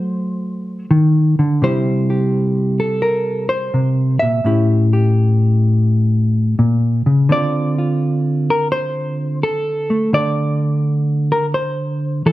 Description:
solo jazz; 85 BPM; 4/4; swing 67% on 8ths; A4 = 440 Hz
hollow-body jazz guitar; solo; 0.0-12.3 s; A2 to E5; -14 LUFS; equal
moderate large studio reverb, RT60 1.2 s; -14 LUFS; side -16 dB against mid
0.0-12.3 A section
0.0 F#dim7; 1.6 C7; 4.4 A7; 7.3 Dm7

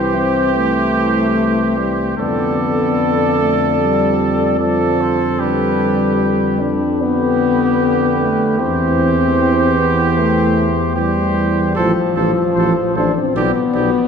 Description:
classical, brass quintet; 75 BPM; 4/4; straight; C major; A4 = 440 Hz
warm cornet; melody; 0.0-13.9 s; B4 to D5; -23 LUFS; left 9 dB
bright trumpet; second line; 0.0-13.9 s; G4 to A4; -21 LUFS; right 4 dB
mellow trombone; accompaniment; 0.0-13.9 s; D3 to F3; -22 LUFS; right 3 dB
warm French horn; accompaniment; 0.0-14.1 s; E3 to D4; -18 LUFS; left 2 dB
mellow bass trombone; bass; 0.0-13.9 s; A1 to F2; -20 LUFS; right 2 dB
wet church reverb, RT60 3.8 s; recorded in a church or concert hall; -13 LUFS; side -6 dB against mid
0.0-14.1 A section
0.0 C; 2.2 Dm/F; 8.6 C/E; 11.8 F/A; 13.3 G7/B

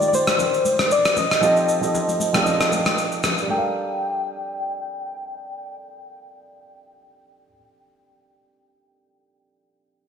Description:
amapiano; 116 BPM; 4/4; swing 55% on 16ths; G minor; A4 = 440 Hz
soft struck synth lead; melody; 0.0-7.5 s; C5 to G5; -22 LUFS; left 2 dB; chorus, low-pass filter, tape echo
dark baby grand piano; accompaniment; 0.0-10.1 s; Eb3 to F5; -25 LUFS; right 4 dB; low-pass filter
shaker and rim click; drums; 0.0-3.5 s; -22 LUFS; left 1 dB
congas; percussion; 0.0-3.7 s; -30 LUFS; left 6 dB
light reverb, small room ambience; dry, gritty hardware recording; -18 LUFS; side -7 dB against mid
0.0-3.5 A section; 3.5-7.6 B section
filter sweep 0.0-3.5
0.0 Ebmaj9; 1.4 F13; 3.5 Gm9

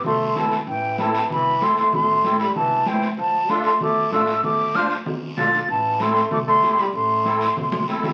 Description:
latin, cumbia; 192 BPM; 4/4; straight; A minor; A4 = 440 Hz
breathy mellow silver concert flute; melody; 0.0-7.8 s; G5 to A6; -22 LUFS; equal
clear trombone; second line; 0.0-7.8 s; E3 to F4; -29 LUFS; equal
upright bass; bass; 0.0-8.1 s; A1 to F2; -38 LUFS; equal
congas; percussion; 0.0-8.1 s; -31 LUFS; equal
guiro; percussion; 0.0-8.1 s; -39 LUFS; equal
musette accordion; accompaniment; 0.3-8.1 s; C4 to C5; -30 LUFS; equal
wet club reverb, RT60 0.8 s; very old 78 rpm record, vinyl crackle; -20 LUFS; mono
0.0-8.1 A section
drum fill 7.7-8.1
0.0 Am; 3.2 Dm; 5.7 Am

